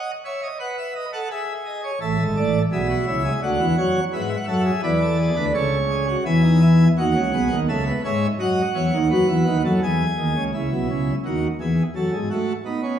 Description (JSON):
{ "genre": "classical, baroque-style 3-part fugue for pipe organ", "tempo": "85 BPM", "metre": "3/4", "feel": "straight", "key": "A major", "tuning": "A4 = 440 Hz", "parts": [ { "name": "pipe organ, plenum", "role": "solo", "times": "0.0-13.0 s", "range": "G#1 to G#5", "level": "-19 LUFS", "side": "equal", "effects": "none" } ], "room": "wet scoring stage reverb, RT60 1.7 s", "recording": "small room reverb", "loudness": "-19 LUFS", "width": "side -9 dB against mid", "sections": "0.0-10.5 A section; 10.5-13.0 B section", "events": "none", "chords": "0.0 B7; 1.3 E/G#; 2.0 A; 3.4 D; 4.1 E7; 5.5 A/C#; 6.3 E; 7.7 A/C#; 8.4 B7; 9.8 E; 10.5 C#m; 11.9 F#m", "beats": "0.60 1.30 | 2.01 2.72 3.42 | 4.13 4.84 5.55 | 6.26 6.98 7.68 | 8.39 9.10 9.81 | 10.53 11.24 11.95 | 12.66" }